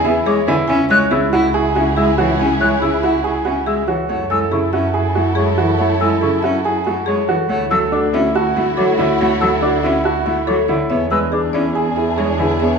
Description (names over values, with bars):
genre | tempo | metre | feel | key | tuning
classical, minimalist pattern music | 141 BPM | 4/4 | straight | F# minor | A4 = 440 Hz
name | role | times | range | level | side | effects
marimba with medium hard mallets | melody | 0.0-12.8 s | G#4 to C#6 | -22 LUFS | left 8 dB | none
rich cello | accompaniment | 0.0-12.8 s | C#3 to E4 | -22 LUFS | equal | none
dark symphonic string section | sustained chords | 0.0-12.8 s | D4 to A4 | -24 LUFS | equal | none
clear baby grand piano | arpeggios | 0.0-12.8 s | D4 to E5 | -20 LUFS | right 4 dB | none
rich studio double bass section | bass | 0.0-12.8 s | C#2 to F#2 | -23 LUFS | right 1 dB | none
mellow French horn | second line | 0.1-12.8 s | E4 to G#4 | -23 LUFS | right 3 dB | none
mellow hollow silver concert flute | arpeggios | 0.1-12.5 s | E5 to F#6 | -22 LUFS | left 4 dB | none
room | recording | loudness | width
wet recital hall reverb, RT60 1.4 s | dark, warm production | -14 LUFS | side -5 dB against mid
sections
0.0-12.8 A section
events
none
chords
0.0 E7; 0.7 C#m; 4.1 F#m7; 7.5 Dadd9; 10.9 E7